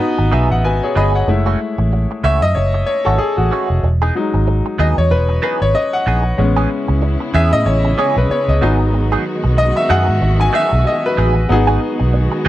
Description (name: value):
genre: lush 1970s-style soul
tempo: 94 BPM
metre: 4/4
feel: swing 58% on 16ths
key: unclear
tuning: A4 = 440 Hz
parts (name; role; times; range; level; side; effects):
- bright grand piano; accompaniment; 0.0-12.5 s; F#3 to B5; -17 LUFS; left 2 dB; none
- direct-recorded clean electric guitar; riff; 0.0-12.5 s; E3 to G#4; -20 LUFS; right 4 dB; wah, wide subtle chorus
- vintage muted fingered electric bass; bass; 0.2-12.5 s; E1 to A2; -15 LUFS; right 1 dB; none
- dark studio string section; sustained chords; 6.4-12.5 s; C#3 to F#4; -22 LUFS; equal; none
room: little or no reverb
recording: dry, close 1970s-style studio recording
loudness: -13 LUFS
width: side -14 dB against mid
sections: 0.0-1.3 A section; 1.3-11.5 B section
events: grand piano fill 0.0-1.3; grand piano solo 1.3-11.5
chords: 0.0 G#m7; 1.3 F#m7; 3.8 Emaj7; 6.4 Amaj9; 8.6 G#m7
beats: 0.01 0.64 | 1.28 1.92 2.56 3.19 | 3.83 4.47 5.11 5.75 | 6.39 7.03 7.66 8.30 | 8.94 9.58 10.22 10.86 | 11.49 12.13